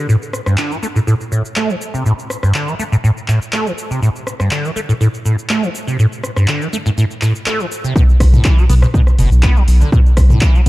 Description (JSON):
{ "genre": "acid house", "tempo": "122 BPM", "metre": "4/4", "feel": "straight", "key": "unclear", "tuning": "A4 = 440 Hz", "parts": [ { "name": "liquid acid bass", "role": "riff", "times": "0.0-10.7 s", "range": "G2 to B3", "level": "-16 LUFS", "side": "equal", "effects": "phaser, overdrive, ensemble chorus, cassette tape, sidechain pumping, tape echo" }, { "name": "booming analog drum machine", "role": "drums", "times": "0.1-10.7 s", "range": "handclaps, hi-hat, rim click, shaker, toms", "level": "-22 LUFS", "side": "equal", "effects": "overdrive" }, { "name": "electronic kick drum", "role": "drums", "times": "8.0-10.5 s", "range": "none", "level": "-11 LUFS", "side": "equal", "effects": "none" }, { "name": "saturated sub bass", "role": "bass", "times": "8.2-10.7 s", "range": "F#1 to B1", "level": "-11 LUFS", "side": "equal", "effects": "sidechain pumping" } ], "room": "digital ambience", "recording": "dark, warm production", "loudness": "-12 LUFS", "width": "side -18 dB against mid", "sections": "0.0-8.0 A section; 8.0-10.7 B section", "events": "drop 8.0-10.7", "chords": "none" }